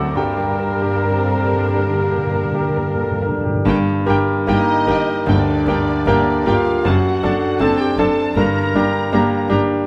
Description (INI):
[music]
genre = classical, romantic movement for piano and orchestra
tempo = 66-81 BPM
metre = 4/4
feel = rubato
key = G minor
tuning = A4 = 443 Hz
[part]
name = clear concert grand piano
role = melody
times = 0.0-9.9 s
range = D2 to G5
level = -20 LUFS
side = equal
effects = none
[part]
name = muted symphonic violin section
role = melody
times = 0.0-9.6 s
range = C4 to Bb5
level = -33 LUFS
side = equal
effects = none
[part]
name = dark clarinet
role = second line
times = 0.0-9.5 s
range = D4 to Bb4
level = -26 LUFS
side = equal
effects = none
[part]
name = mellow hollow concert flute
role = second line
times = 0.0-3.3 s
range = Bb5 to D6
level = -31 LUFS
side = equal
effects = none
[part]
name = mellow oboe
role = second line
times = 0.0-3.3 s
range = A4 to Bb4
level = -32 LUFS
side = equal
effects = none
[part]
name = muted symphonic violin section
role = second line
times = 0.0-9.5 s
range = A3 to Bb5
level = -31 LUFS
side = equal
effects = none
[part]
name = mellow bassoon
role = accompaniment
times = 0.0-3.3 s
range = G3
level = -34 LUFS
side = equal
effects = none
[part]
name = muted symphonic viola section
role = accompaniment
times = 0.0-9.6 s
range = F#3 to D4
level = -30 LUFS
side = equal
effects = none
[part]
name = mellow French horn section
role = sustained chords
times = 0.0-3.7 s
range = Bb3 to G4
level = -32 LUFS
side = equal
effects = none
[part]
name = muted chamber cello section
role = bass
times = 0.0-9.6 s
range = F#2 to Bb4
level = -29 LUFS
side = equal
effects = none
[part]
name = muted symphonic double bass section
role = bass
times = 0.0-9.6 s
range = F#1 to G2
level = -28 LUFS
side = equal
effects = none
[part]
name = timpani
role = percussion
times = 0.2-9.5 s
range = G2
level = -29 LUFS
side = equal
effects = none
[sound]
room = moderate concert hall reverb, RT60 1.9 s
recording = none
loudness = -17 LUFS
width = mono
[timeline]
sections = 0.0-3.7 A section; 3.7-9.9 B section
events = timpani fill 0.2-3.7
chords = 0.2 Gm; 6.8 D7/F#; 8.4 Gm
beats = | 0.17 1.05 1.91 2.77 | 3.65 4.47 5.27 6.06 | 6.84 7.60 8.36 9.12